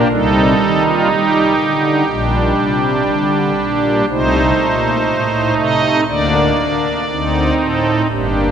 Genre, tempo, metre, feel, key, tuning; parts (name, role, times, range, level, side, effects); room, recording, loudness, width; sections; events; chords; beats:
classical, chorale-style piece for pipe organ; 60 BPM; 4/4; straight; G minor; A4 = 440 Hz
pipe organ, strings celeste; solo; 0.0-8.5 s; G1 to Eb5; -13 LUFS; right 1 dB
wet cathedral reverb, RT60 4.7 s; nothing above 10.4 kHz; -13 LUFS; side -8 dB against mid
0.0-8.5 A section
0.1 Cm; 2.1 Gm/Bb; 4.1 Adim/C; 6.1 Bb/D; 7.1 D5
| 0.12 1.10 2.09 3.08 | 4.09 5.08 6.08 7.07 | 8.09